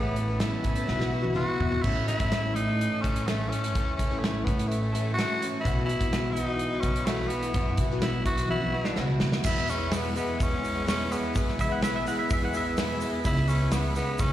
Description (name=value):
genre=folk rock and heartland rock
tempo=126 BPM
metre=4/4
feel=straight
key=E major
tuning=A4 = 437 Hz
part: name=growling tenor saxophone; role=melody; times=0.0-14.3 s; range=A3 to F#4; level=-31 LUFS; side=equal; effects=slapback echo
part: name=picked plugged-in twelve-string acoustic guitar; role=accompaniment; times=0.0-14.3 s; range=E2 to F#4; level=-34 LUFS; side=left 5 dB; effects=ensemble chorus, slapback echo
part: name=tonewheel organ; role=sustained chords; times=0.0-14.3 s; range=E3 to A4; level=-37 LUFS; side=right 1 dB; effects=none
part: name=electric guitar through a small old amp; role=riff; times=0.0-14.3 s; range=E2 to A4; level=-35 LUFS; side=right 2 dB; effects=slapback echo
part: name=upright bass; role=bass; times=0.0-14.3 s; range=A1 to E3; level=-30 LUFS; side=equal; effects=none
part: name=natural country drum kit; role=drums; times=0.2-14.3 s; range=crash cymbal, hi-hat, kick drum, snare drum, toms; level=-30 LUFS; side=equal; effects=none
part: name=egg shaker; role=percussion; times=9.4-14.3 s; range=none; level=-46 LUFS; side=right 4 dB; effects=none
part: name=pedal steel guitar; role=second line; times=11.6-13.1 s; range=E5 to F#5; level=-33 LUFS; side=right 2 dB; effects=slapback echo, digital delay
room=light reverb, studio reverb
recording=live gig heard through the venue's PA, recital hall reverb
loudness=-24 LUFS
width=side -12 dB against mid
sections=0.0-1.8 A section; 1.8-9.5 B section; 9.5-14.3 C section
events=drum fill 0.9-1.8, 8.5-9.5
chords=0.0 Aadd9; 0.9 Bsus4; 1.8 A; 5.7 Bsus4; 9.5 E; 13.2 C#m7